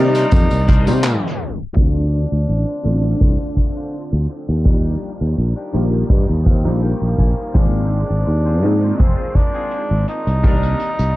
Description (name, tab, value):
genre	vaporwave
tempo	83 BPM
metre	4/4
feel	straight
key	unclear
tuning	A4 = 440 Hz
part	warm tenor saxophone	melody	0.0-11.2 s	Bb3 to Eb4	-25 LUFS	equal	tape echo
part	bright electric grand piano	accompaniment	0.0-11.2 s	D3 to D5	-24 LUFS	left 1 dB	ensemble chorus, analog delay
part	sustaining fretless electric bass	bass	0.0-11.1 s	F1 to C3	-17 LUFS	equal	lush chorus
part	clean electric guitar	riff	0.1-10.9 s	C4 to Ab5	-34 LUFS	left 4 dB	wide subtle chorus, vintage 12-bit sampler grit, low-pass filter, analog delay
part	unplugged drum kit	drums	0.1-11.1 s	crash cymbal, handclaps, hi-hat, tambourine	-31 LUFS	right 1 dB	low-pass filter on hats, low-pass filter on cymbals, low-pass filter on perc, low-pass filter on snare, low-pass filter on room
part	kick drum	drums	0.3-10.6 s	none	-15 LUFS	equal	none
room	studio ambience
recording	dark, warm production, cassette tape, low-pass filter, tape stop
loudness	-15 LUFS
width	side -17 dB against mid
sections	0.0-1.8 A section; 1.8-11.2 B section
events	clean electric guitar fill 0.3-1.8, 5.4-7.5; band accent 1.0-1.4; tape stop 1.0-1.8; filter sweep on clean electric guitar 1.8-11.2; filter sweep 1.8-11.2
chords	0.0 Cm9; 1.8 Dm7; 4.7 Ebmaj7; 7.5 Ab6; 10.4 Cm9